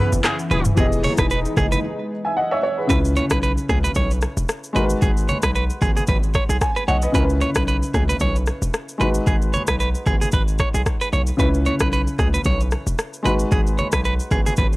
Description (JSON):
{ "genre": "afrobeats", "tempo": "113 BPM", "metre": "4/4", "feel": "swing 55% on 16ths", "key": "C# minor", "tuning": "A4 = 443 Hz", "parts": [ { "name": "warm horn section", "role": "second line", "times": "0.0-0.6 s", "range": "C#4 to G#4", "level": "-26 LUFS", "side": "equal", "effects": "none" }, { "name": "dark baby grand piano", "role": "accompaniment", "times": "0.0-14.8 s", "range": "C#3 to G#5", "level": "-25 LUFS", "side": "left 1 dB", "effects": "none" }, { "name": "warm analog pad", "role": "sustained chords", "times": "0.0-2.9 s", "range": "C#3 to D#4", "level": "-28 LUFS", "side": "left 1 dB", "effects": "chorus" }, { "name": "hard-hitting 808-style bass", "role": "bass", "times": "0.1-14.8 s", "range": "D#1 to C#2", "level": "-22 LUFS", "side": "equal", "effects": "tube saturation" }, { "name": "afro-pop drum kit", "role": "drums", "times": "0.1-14.8 s", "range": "handclaps, hi-hat, kick drum, rim click, shaker, toms", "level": "-22 LUFS", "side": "equal", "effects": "none" }, { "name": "direct-recorded clean electric guitar", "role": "riff", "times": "0.5-14.7 s", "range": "G#4 to C#5", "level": "-25 LUFS", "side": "right 3 dB", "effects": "tape echo" }, { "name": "congas", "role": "percussion", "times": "0.5-14.7 s", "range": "none", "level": "-31 LUFS", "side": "equal", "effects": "none" } ], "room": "digital ambience", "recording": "dry, gritty hardware recording, cassette tape", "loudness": "-17 LUFS", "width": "side -20 dB against mid", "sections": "0.0-2.9 A section; 2.9-14.8 B section", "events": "break 1.8-2.9", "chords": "0.0 C#m7; 0.8 Emaj7; 2.9 C#m7; 4.8 G#m7; 7.1 C#m7; 9.0 G#m7; 11.4 C#m7; 13.3 G#m7" }